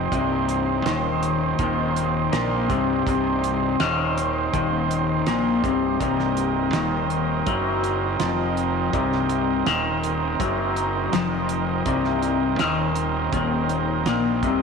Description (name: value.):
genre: psychedelic rock.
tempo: 82 BPM.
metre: 4/4.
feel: straight.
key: C minor.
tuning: A4 = 445 Hz.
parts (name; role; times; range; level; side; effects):
overdriven combo organ; sustained chords; 0.0-14.6 s; C4 to G5; -26 LUFS; right 10 dB; none.
electric guitar through a small old amp; riff; 0.0-14.6 s; C2 to Bb3; -23 LUFS; left 8 dB; phaser.
fuzz fingered electric bass; bass; 0.0-14.6 s; C1 to Bb1; -29 LUFS; right 2 dB; overdrive.
cloth-damped thuddy drum kit; drums; 0.1-14.6 s; hi-hat, kick drum, snare drum; -30 LUFS; right 5 dB; none.
room: wet echo chamber reverb, RT60 2.4 s.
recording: 1960s-style stereo with parts hard left and right.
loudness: -20 LUFS.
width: side -5 dB against mid.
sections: 0.0-14.6 A section.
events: none.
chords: 0.0 Cm.